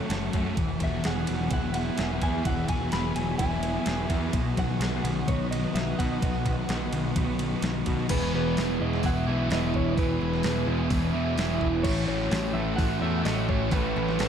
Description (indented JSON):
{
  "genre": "rock, shoegaze and dream pop",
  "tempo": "128 BPM",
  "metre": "4/4",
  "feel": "straight",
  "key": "E major",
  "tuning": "A4 = 440 Hz",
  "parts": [
    { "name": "soft string machine", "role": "sustained chords", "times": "0.0-14.3 s", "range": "G#4 to E6", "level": "-40 LUFS", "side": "equal", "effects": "ensemble chorus" },
    { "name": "picked twelve-string acoustic guitar", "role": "arpeggios", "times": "0.0-14.3 s", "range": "E4 to A4", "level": "-37 LUFS", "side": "right 6 dB", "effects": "analog chorus, tape echo" },
    { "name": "raw garage guitar", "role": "riff", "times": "0.0-14.3 s", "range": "A2 to A4", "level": "-32 LUFS", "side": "right 10 dB", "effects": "overdrive, reverse reverb" },
    { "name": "thick fuzz guitar", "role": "riff", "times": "0.0-14.3 s", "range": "E2 to A4", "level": "-31 LUFS", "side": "left 10 dB", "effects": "distortion, analog chorus" },
    { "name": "growling picked electric bass", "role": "bass", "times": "0.1-14.3 s", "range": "E1 to B2", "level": "-31 LUFS", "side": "equal", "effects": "overdrive" },
    { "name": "crisp 8-bit digital drum machine", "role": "drums", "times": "0.1-14.3 s", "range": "crash cymbal, hi-hat, kick drum, ride cymbal, snare drum", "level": "-30 LUFS", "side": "equal", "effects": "none" },
    { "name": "electric guitar through a small old amp", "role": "melody", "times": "0.8-14.3 s", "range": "B4 to B5", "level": "-34 LUFS", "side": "equal", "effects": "tape echo" },
    { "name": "distorted electric guitar", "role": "riff", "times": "8.1-14.3 s", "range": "E2 to A3", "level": "-33 LUFS", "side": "right 1 dB", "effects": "overdrive" }
  ],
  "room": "light reverb",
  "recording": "dark, warm production",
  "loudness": "-24 LUFS",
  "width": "side -8 dB against mid",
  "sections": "0.0-8.1 A section; 8.1-14.3 B section",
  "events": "none",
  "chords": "0.0 F#m; 0.6 Eadd9; 4.3 B; 8.1 Emaj7; 11.8 A6"
}